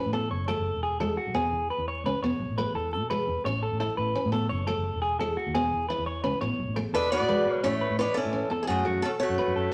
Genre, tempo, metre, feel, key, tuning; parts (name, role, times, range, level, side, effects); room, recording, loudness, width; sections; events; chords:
highlife; 115 BPM (dotted quarters); 12/8; straight; A major; A4 = 440 Hz
picked steel-string acoustic guitar; accompaniment; 0.0-9.7 s; G#3 to E4; -35 LUFS; equal
clean electric guitar; arpeggios; 0.0-9.7 s; F#4 to C#5; -32 LUFS; equal
fingered electric bass; bass; 0.1-9.7 s; E1 to B2; -35 LUFS; equal
picked acoustic archtop guitar; melody; 6.9-9.7 s; A3 to D5; -28 LUFS; equal
clear tenor saxophone; second line; 7.0-9.7 s; C#3 to B3; -39 LUFS; equal
wet studio reverb, RT60 0.9 s; vinyl crackle; -28 LUFS; mono
0.0-7.6 A section; 7.6-9.7 B section
0.3 F#madd9; 1.4 E; 2.4 Amaj9; 3.4 A; 4.5 F#madd9; 5.5 E; 6.6 Bm7; 7.6 A; 8.7 F#madd9